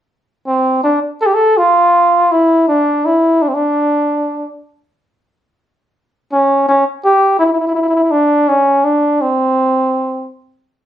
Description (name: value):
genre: fado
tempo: 82 BPM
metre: 4/4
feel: rubato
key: D minor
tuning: A4 = 440 Hz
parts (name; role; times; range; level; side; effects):
- warm flugelhorn; solo; 0.5-10.3 s; C4 to A4; -11 LUFS; equal; none
room: wet studio reverb, RT60 0.6 s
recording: band playing live in one room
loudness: -11 LUFS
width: side -11 dB against mid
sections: 0.4-10.9 A section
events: none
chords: none